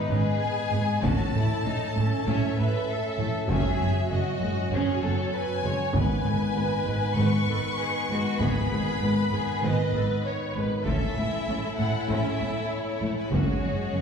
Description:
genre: cinematic, epic orchestral film score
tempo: 98 BPM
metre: 4/4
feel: straight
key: G# phrygian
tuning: A4 = 440 Hz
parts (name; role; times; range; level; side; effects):
- warm symphonic violin section; melody; 0.0-14.0 s; B4 to C#6; -33 LUFS; left 3 dB; none
- warm symphonic violin section; second line; 0.0-14.0 s; C#4 to C#5; -32 LUFS; left 1 dB; none
- warm studio viola section; accompaniment; 0.0-14.0 s; G#3 to B4; -33 LUFS; right 2 dB; none
- mellow French horn section; sustained chords; 0.0-14.0 s; D#3 to D#5; -34 LUFS; left 2 dB; none
- rich symphonic double bass section; bass; 0.1-14.0 s; F#1 to A1; -30 LUFS; right 1 dB; none
- warm studio cello section; bass; 0.1-14.0 s; F#2 to A2; -30 LUFS; equal; none
- taiko ensemble; drums; 1.0-13.9 s; none; -30 LUFS; equal; none
room: wet scoring stage reverb, RT60 1.7 s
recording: heard from further back in the room, small room ambience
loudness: -24 LUFS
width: side -6 dB against mid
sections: 0.0-14.0 A section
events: none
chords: 0.0 G#m; 1.0 A; 3.5 F#sus2; 5.9 G#m; 10.9 A; 13.3 F#sus2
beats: 0.41 | 1.02 1.64 2.25 2.87 | 3.48 4.10 4.71 5.33 | 5.94 6.55 7.17 7.78 | 8.40 9.01 9.63 10.24 | 10.86 11.47 12.09 12.70 | 13.32 13.93

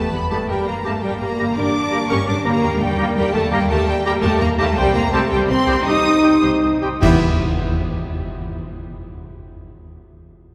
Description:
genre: cinematic, heroic adventure film score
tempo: 110 BPM (dotted quarters)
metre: 12/8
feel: uneven beats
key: unclear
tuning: A4 = 440 Hz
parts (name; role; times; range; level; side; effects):
- rich symphonic violin section; melody; 0.0-7.2 s; E5 to Eb6; -31 LUFS; equal; none
- rich chamber violin section; second line; 0.0-7.2 s; E5 to Eb6; -33 LUFS; equal; none
- silver concert flute; second line; 0.0-7.2 s; E5 to Eb6; -30 LUFS; equal; none
- warm symphonic viola section; accompaniment; 0.0-7.2 s; D4 to C5; -28 LUFS; equal; none
- mellow French horn section; sustained chords; 0.0-7.2 s; G3 to E4; -24 LUFS; equal; none
- concert harp; arpeggios; 0.0-9.3 s; G2 to G5; -33 LUFS; equal; none
- rich symphonic cello section; bass; 0.0-7.2 s; E3 to Eb4; -26 LUFS; equal; none
- warm symphonic double bass section; bass; 0.0-7.2 s; C2 to G2; -27 LUFS; equal; none
- bright oboe; second line; 0.3-7.2 s; G5 to B5; -34 LUFS; equal; none
- mellow clarinet; second line; 0.3-7.2 s; G4; -32 LUFS; equal; none
- clear trombone section; sustained chords; 0.3-7.2 s; G3 to C4; -32 LUFS; equal; none
- clash cymbals and concert bass drum; percussion; 7.0-7.7 s; none; -28 LUFS; equal; none
- timpani; percussion; 7.0-7.2 s; E2; -28 LUFS; equal; none
room: wet cathedral reverb, RT60 4.6 s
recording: recorded in a church or concert hall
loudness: -18 LUFS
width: mono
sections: 0.0-7.0 A section; 7.0-9.3 B section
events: slowing down 3.3-7.0; band accent 7.0-7.4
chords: 0.5 Gm; 2.6 D#; 4.8 Cm; 7.0 Em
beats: | 0.49 1.03 1.56 2.10 | 2.63 3.16 3.69 4.23 | 4.77 5.31 5.86 6.43 | 7.02 7.59 8.17 8.75

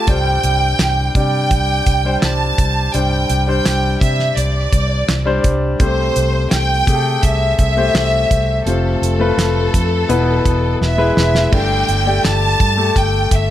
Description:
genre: piano-driven pop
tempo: 84 BPM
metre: 4/4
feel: straight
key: unclear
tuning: A4 = 440 Hz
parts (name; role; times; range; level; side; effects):
- rich studio violin section; melody; 0.0-13.5 s; A4 to A5; -19 LUFS; right 1 dB; none
- clear concert grand piano; accompaniment; 0.0-13.5 s; G2 to D5; -20 LUFS; left 3 dB; none
- vintage muted fingered electric bass; bass; 0.1-13.5 s; E1 to C3; -18 LUFS; equal; none
- damped 70s drum kit; drums; 0.1-13.5 s; crash cymbal, handclaps, hi-hat, kick drum, snare drum; -18 LUFS; equal; none
room: light reverb, studio ambience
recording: none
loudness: -13 LUFS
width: side -12 dB against mid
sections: 0.0-11.5 A section; 11.5-13.5 B section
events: drum fill 10.8-11.5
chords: 0.1 Csus2; 5.8 Am7/C; 8.7 F; 10.1 E; 11.5 Gsus2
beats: | 0.08 0.79 1.51 2.22 | 2.94 3.65 4.37 5.08 | 5.80 6.52 7.23 7.95 | 8.66 9.38 10.10 10.81 | 11.53 12.24 12.96

